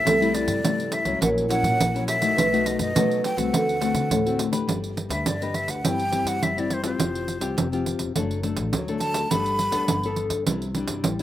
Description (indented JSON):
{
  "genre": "samba and choro",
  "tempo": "104 BPM",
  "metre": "4/4",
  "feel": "straight",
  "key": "G major from 4.7 s",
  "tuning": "A4 = 440 Hz",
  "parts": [
    { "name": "breathy jazz flute", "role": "melody", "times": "0.0-10.2 s", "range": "C5 to B5", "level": "-26 LUFS", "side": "equal", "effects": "slapback echo" },
    { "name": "marimba with medium mallets", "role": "second line", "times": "0.0-4.7 s", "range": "A4 to B4", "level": "-27 LUFS", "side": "right 3 dB", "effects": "slapback echo" },
    { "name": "nylon-string guitar", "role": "accompaniment", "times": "0.0-11.2 s", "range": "G2 to B4", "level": "-27 LUFS", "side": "left 5 dB", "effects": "slapback echo" },
    { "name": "upright bass", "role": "bass", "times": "0.1-11.2 s", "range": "E1 to D3", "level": "-31 LUFS", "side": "equal", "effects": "none" },
    { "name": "pandeiro", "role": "percussion", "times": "0.1-11.2 s", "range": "none", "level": "-27 LUFS", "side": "right 4 dB", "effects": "none" }
  ],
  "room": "light reverb",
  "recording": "recorded outdoors, with no room sound",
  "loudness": "-21 LUFS",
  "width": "side -12 dB against mid",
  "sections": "0.0-4.7 A section; 4.7-11.2 B section",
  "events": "flute solo 4.7-11.2",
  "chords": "0.1 C6; 1.2 F#7/A#; 2.4 B7; 3.5 D7; 4.7 G; 5.8 C/G; 7.0 Fsus2; 8.2 D/F#; 9.3 Gadd9; 10.5 Cadd9"
}